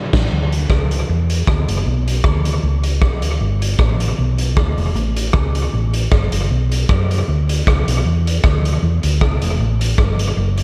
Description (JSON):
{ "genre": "ska", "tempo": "155 BPM", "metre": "4/4", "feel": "swing 54% on 8ths", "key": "D major", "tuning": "A4 = 443 Hz", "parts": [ { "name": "hollow-body short-scale fingered electric bass", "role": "bass", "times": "0.1-10.6 s", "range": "E1 to F#2", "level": "-20 LUFS", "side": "equal", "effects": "none" }, { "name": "raw garage drum kit", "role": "drums", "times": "0.1-10.6 s", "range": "crash cymbal, hi-hat, kick drum, rim click, snare drum", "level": "-21 LUFS", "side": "equal", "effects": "analog delay" } ], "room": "little or no reverb", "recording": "none", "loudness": "-17 LUFS", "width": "mono", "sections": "0.3-10.6 A section", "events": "band accent 0.0-0.3", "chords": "none" }